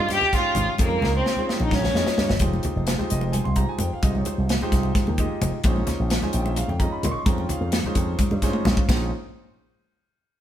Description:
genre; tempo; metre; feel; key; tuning
electric jazz fusion; 260 BPM (eighths); 7/8; straight; Bb dorian; A4 = 439 Hz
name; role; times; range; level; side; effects
warm violin; melody; 0.0-2.3 s; Bb3 to G4; -23 LUFS; equal; none
clear concert grand piano; accompaniment; 0.0-9.1 s; Ab3 to Db6; -29 LUFS; right 1 dB; none
slap bass with an envelope filter; bass; 0.0-9.1 s; F1 to Bb2; -25 LUFS; equal; none
crisp fusion drum kit; drums; 0.1-9.0 s; hi-hat, kick drum, ride cymbal, snare drum, toms; -24 LUFS; equal; none
congas; percussion; 0.1-9.1 s; none; -29 LUFS; left 1 dB; none
room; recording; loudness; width
moderate stone room reverb, RT60 1.0 s; band playing live in one room; -20 LUFS; side -11 dB against mid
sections
0.0-2.4 A section; 2.4-8.9 B section; 8.9-10.4 C section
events
drum fill 1.0-2.4, 8.5-8.9; grand piano fill 8.2-8.9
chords
0.0 Bbm11; 2.4 Fm9; 5.7 Bbm11

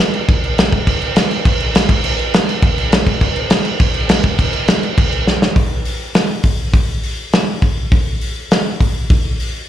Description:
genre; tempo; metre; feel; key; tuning
punk; 204 BPM; 4/4; straight; none; none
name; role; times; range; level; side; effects
loose indie drum kit; drums; 0.1-9.5 s; crash cymbal, hi-hat, kick drum, snare drum; -13 LUFS; equal; none
room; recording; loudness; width
light reverb; live gig heard through the venue's PA, club reverb; -13 LUFS; side -11 dB against mid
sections
0.0-5.6 A section; 5.6-9.7 B section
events
drum fill 5.3; half time 5.6-9.7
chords
none

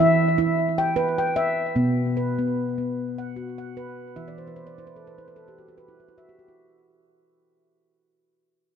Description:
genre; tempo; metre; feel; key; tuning
world meditative; 75 BPM; 3/4; swing 55% on 16ths; E minor; A4 = 440 Hz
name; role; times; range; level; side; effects
handpan; solo; 0.0-6.7 s; B2 to G5; -22 LUFS; equal; tape echo
room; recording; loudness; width
wet concert hall reverb, RT60 2.1 s; none; -21 LUFS; side -8 dB against mid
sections
0.0-6.6 A section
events
fade-out 0.0-6.6; handpan fill 4.2-6.6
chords
0.0 Em; 1.8 B5; 4.2 E5

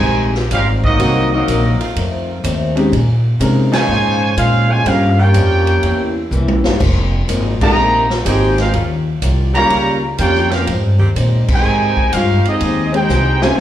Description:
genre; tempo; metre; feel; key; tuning
jazz, big band swing; 124 BPM; 4/4; swing 68% on 8ths; Ab major; A4 = 440 Hz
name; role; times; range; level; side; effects
clear trumpet section; melody; 0.0-13.6 s; C4 to Bb5; -17 LUFS; right 1 dB; slapback echo
warm trombone section; second line; 0.0-13.6 s; C3 to Ab4; -20 LUFS; right 1 dB; slapback echo
picked old ladder-braced acoustic guitar; accompaniment; 0.0-13.6 s; F2 to Ab4; -25 LUFS; left 4 dB; slapback echo
clear saxophone section; sustained chords; 0.0-12.4 s; Db3 to Ab4; -28 LUFS; equal; none
upright bass; bass; 0.0-13.6 s; F1 to C3; -16 LUFS; equal; none
swinging big-band drum kit; drums; 0.3-13.6 s; crash cymbal, hi-hat, kick drum, ride cymbal, snare drum, toms; -22 LUFS; equal; none
clear grand piano; accompaniment; 1.0-9.7, 12.9-13.6 s; Eb3 to C5; -18 LUFS; left 2 dB; none
room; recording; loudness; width
small room ambience; live gig heard through the venue's PA, club reverb; -12 LUFS; side -11 dB against mid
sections
0.0-13.6 A section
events
band accent 3.6, 7.5, 11.4; drum fill 6.3-6.8, 13.1-13.6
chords
0.0 Abmaj7; 1.0 Cm7b5; 2.0 F7; 2.9 Bbm11; 4.9 Gm7b5; 5.8 C7b9; 6.8 Fm11; 8.7 Eb9; 10.7 Abmaj7

